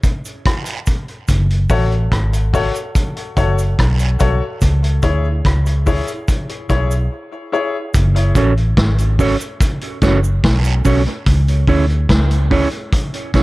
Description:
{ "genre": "dub reggae", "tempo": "72 BPM", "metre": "4/4", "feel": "straight", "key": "F# minor", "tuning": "A4 = 444 Hz", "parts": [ { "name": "vintage drum kit", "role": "drums", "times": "0.0-13.4 s", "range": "hi-hat, kick drum, rim click, snare drum", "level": "-17 LUFS", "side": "equal", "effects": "none" }, { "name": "cabasa and guiro", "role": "percussion", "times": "0.0-11.0 s", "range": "none", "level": "-32 LUFS", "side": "right 6 dB", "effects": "tape echo" }, { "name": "vintage muted fingered electric bass", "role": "bass", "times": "1.3-13.4 s", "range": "F#1 to D2", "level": "-15 LUFS", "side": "equal", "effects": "none" }, { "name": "clear upright piano", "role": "stabs", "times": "1.7-7.8 s", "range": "E4 to C#5", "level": "-22 LUFS", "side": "left 4 dB", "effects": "tape echo" }, { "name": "mellow electric guitar", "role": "accompaniment", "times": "8.4-13.4 s", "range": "C#4 to C#5", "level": "-20 LUFS", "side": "right 4 dB", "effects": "tape echo" } ], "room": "light reverb, studio ambience", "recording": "dark, warm production", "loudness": "-14 LUFS", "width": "side -20 dB against mid", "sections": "0.0-7.9 A section; 7.9-13.4 B section", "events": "break 0.0-7.9; part muted 11.3-13.4", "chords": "0.0 N.C.; 1.3 F#m; 4.6 C#m; 7.9 F#m; 11.3 C#m" }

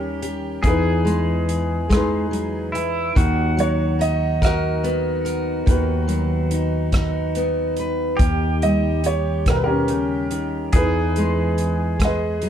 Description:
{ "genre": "acoustic folk-pop ballad", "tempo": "48 BPM (dotted quarters)", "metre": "6/8", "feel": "straight", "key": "unclear", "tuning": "A4 = 445 Hz", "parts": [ { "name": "clear upright piano", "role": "melody", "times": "0.0-12.5 s", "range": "C#4 to D#5", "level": "-24 LUFS", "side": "right 1 dB", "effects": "none" }, { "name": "pedal steel guitar", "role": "second line", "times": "0.0-12.5 s", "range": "E4 to G#4", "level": "-30 LUFS", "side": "right 2 dB", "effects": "none" }, { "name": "fingerpicked steel-string acoustic guitar", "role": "accompaniment", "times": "0.0-12.5 s", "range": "B2 to B4", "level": "-24 LUFS", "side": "left 1 dB", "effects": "none" }, { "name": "fretless electric bass", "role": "bass", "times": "0.0-12.5 s", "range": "D#2 to E2", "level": "-23 LUFS", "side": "equal", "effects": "none" }, { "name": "natural country drum kit", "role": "drums", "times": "0.2-12.5 s", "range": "hi-hat, kick drum, rim click", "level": "-21 LUFS", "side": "equal", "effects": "none" } ], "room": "light reverb", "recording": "dark, warm production, faint mains hum", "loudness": "-18 LUFS", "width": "side -9 dB against mid", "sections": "0.0-12.5 A section", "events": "none", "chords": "0.0 D#7; 0.6 Emaj7; 3.2 Bmaj7/D#; 8.2 D#7; 10.7 Emaj7" }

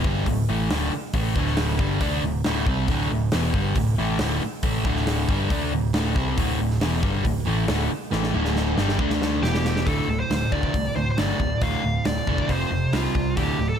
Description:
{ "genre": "hard rock", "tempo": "137 BPM", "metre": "4/4", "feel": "straight", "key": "D dorian", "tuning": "A4 = 439 Hz", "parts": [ { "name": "overdriven electric guitar", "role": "riff", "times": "0.0-13.8 s", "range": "D2 to D4", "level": "-28 LUFS", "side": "left 13 dB", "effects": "none" }, { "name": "sludgy distorted guitar", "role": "riff", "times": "0.0-13.8 s", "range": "D2 to D4", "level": "-26 LUFS", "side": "right 9 dB", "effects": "overdrive" }, { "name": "picked electric bass", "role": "bass", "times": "0.0-13.7 s", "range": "D1 to D2", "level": "-27 LUFS", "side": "left 1 dB", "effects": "none" }, { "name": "big rock drum kit", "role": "drums", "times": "0.0-13.5 s", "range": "hi-hat, kick drum, snare drum", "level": "-27 LUFS", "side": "equal", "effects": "none" }, { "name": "smooth overdriven lead guitar", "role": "melody", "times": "9.4-13.8 s", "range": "F4 to F5", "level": "-28 LUFS", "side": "equal", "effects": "none" } ], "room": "little or no reverb", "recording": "none", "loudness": "-21 LUFS", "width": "side -8 dB against mid", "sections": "0.0-9.9 A section; 9.9-13.8 B section", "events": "drum fill 8.1-9.9", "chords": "0.0 D5; 9.4 E5; 9.9 D5; 12.5 F5; 12.9 C5" }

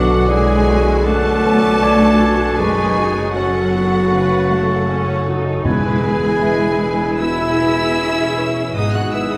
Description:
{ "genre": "cinematic", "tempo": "78 BPM", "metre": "4/4", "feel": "rubato", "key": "E major", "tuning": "A4 = 440 Hz", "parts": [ { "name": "rich studio violin section", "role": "melody", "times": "0.0-9.4 s", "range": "F#5 to F#6", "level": "-29 LUFS", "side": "equal", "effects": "none" }, { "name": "bright clarinet", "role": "second line", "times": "0.0-9.4 s", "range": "F#4 to F#5", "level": "-23 LUFS", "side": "equal", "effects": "none" }, { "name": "clear oboe", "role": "second line", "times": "0.0-9.4 s", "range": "F#5 to A5", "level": "-30 LUFS", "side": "equal", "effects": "none" }, { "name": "mellow hollow silver concert flute", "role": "second line", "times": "0.0-9.4 s", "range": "B5 to D#6", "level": "-27 LUFS", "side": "equal", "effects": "none" }, { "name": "rich studio violin section", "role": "second line", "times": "0.0-9.4 s", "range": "F#5 to F#6", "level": "-30 LUFS", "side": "equal", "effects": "none" }, { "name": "clear studio viola section", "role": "accompaniment", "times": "0.0-9.4 s", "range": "A3 to B4", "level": "-27 LUFS", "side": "equal", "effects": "none" }, { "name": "felt-muted upright piano", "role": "accompaniment", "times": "0.0-9.4 s", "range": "B1 to E5", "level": "-25 LUFS", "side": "equal", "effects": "none" }, { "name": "mellow French horn section", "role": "sustained chords", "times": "0.0-9.4 s", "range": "D3 to E4", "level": "-27 LUFS", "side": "equal", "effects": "none" }, { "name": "concert harp", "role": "arpeggios", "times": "0.0-9.4 s", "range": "E2 to E4", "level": "-30 LUFS", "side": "equal", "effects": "none" }, { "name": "rich studio cello section", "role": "bass", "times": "0.0-9.4 s", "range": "F#3 to F#4", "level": "-23 LUFS", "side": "equal", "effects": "none" }, { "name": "warm studio double bass section", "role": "bass", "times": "0.0-9.4 s", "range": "E1 to B1", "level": "-26 LUFS", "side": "equal", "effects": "none" }, { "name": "timpani", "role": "percussion", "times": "5.6-6.8 s", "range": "E2", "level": "-27 LUFS", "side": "equal", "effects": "none" } ], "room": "wet recital hall reverb, RT60 1.7 s", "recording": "recorded in a church or concert hall", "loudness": "-16 LUFS", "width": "mono", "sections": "0.0-9.4 A section", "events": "none", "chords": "0.0 Bm7; 2.6 F#m; 5.6 E; 8.7 G#m7" }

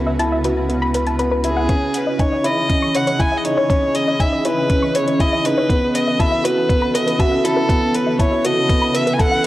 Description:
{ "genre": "piano and strings electronica", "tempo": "120 BPM", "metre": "4/4", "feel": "straight", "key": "C# minor", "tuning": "A4 = 440 Hz", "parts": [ { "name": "granular cloud pad", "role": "sustained chords", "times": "0.0-9.5 s", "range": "C#3 to D#5", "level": "-24 LUFS", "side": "equal", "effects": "built-in reverb, sidechain pumping" }, { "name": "felt-muted upright piano", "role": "riff", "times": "0.0-9.5 s", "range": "B3 to A4", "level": "-20 LUFS", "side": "right 1 dB", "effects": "none" }, { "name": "warm sub bass", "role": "bass", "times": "0.0-1.7 s", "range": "C#2", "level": "-23 LUFS", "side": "equal", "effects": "sidechain pumping" }, { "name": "soft round pluck", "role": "arpeggios", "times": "0.1-9.4 s", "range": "B4 to C#6", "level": "-24 LUFS", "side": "left 1 dB", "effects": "chorus, sidechain pumping, tape echo" }, { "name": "electronic hi-hat", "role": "drums", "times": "0.2-9.5 s", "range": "none", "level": "-30 LUFS", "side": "equal", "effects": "overdrive" }, { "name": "rich violin", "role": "melody", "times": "1.5-9.5 s", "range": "G#4 to G#5", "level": "-20 LUFS", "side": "equal", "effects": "cassette tape" }, { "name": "electronic kick drum", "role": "drums", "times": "1.7-9.3 s", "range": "none", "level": "-18 LUFS", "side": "equal", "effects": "none" } ], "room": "moderate spring reverb, RT60 1.9 s", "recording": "home recording on cassette", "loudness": "-15 LUFS", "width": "side -15 dB against mid", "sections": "0.0-1.7 A section; 1.7-9.5 B section", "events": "build-up 1.7-9.5; filter sweep on synth arpeggio sound 1.7-9.5", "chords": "0.0 B7sus4/C#; 1.7 C#madd9; 5.7 B7sus4/C#" }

